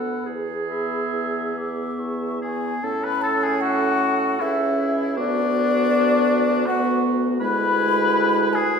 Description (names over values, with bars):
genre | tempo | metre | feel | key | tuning
classical, slow romantic movement for wind quintet | 69-82 BPM | 3/4 | rubato | A major | A4 = 440 Hz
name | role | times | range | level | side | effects
mellow hollow concert flute | melody | 0.0-8.8 s | D5 to E6 | -25 LUFS | left 4 dB | none
warm oboe | second line | 0.0-8.8 s | D4 to F#5 | -25 LUFS | left 3 dB | none
clear clarinet | accompaniment | 0.0-8.8 s | E4 to A4 | -28 LUFS | right 6 dB | none
warm French horn | accompaniment | 0.0-8.7 s | G#3 to C#4 | -25 LUFS | equal | none
mellow bassoon | bass | 0.0-8.8 s | C#2 to A2 | -28 LUFS | right 3 dB | none
room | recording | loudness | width
wet scoring stage reverb, RT60 1.6 s | heard from further back in the room | -19 LUFS | side -6 dB against mid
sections
0.0-2.8 A section; 2.8-8.8 B section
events
none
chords
0.3 E; 2.8 A; 5.2 Bm/D; 7.4 E7/D